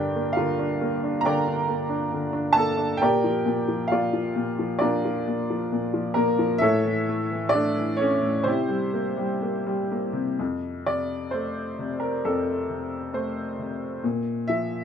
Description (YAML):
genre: classical, lyrical solo piano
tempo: 65 BPM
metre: 4/4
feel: uneven beats, rubato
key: F major from 10.4 s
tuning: A4 = 440 Hz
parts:
  - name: clear upright piano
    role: solo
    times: 0.0-14.8 s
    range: F2 to Bb5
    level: -23 LUFS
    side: equal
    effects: none
room: light reverb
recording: none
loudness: -23 LUFS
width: side -8 dB against mid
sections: 0.0-10.4 A section; 10.4-14.8 B section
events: none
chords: 0.0 Gm; 3.0 Bb; 6.6 A; 8.5 C7; 10.4 F; 14.0 Bb5